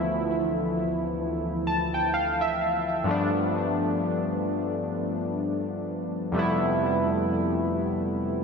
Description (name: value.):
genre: R&B.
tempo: 64 BPM.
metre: 4/4.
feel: swing 58% on 16ths.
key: D dorian.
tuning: A4 = 441 Hz.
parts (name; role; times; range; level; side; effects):
warm analog keys; solo; 0.0-8.4 s; D2 to A5; -24 LUFS; equal; chorus, ping-pong delay.
room: wet cathedral reverb, RT60 4.8 s.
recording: dreamy mix soaked in reverb.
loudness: -24 LUFS.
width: side -5 dB against mid.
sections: 0.0-8.4 A section.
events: synth keys fill 1.2-3.1.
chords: 0.0 Dm69; 3.1 G7; 6.4 Fmaj9#11.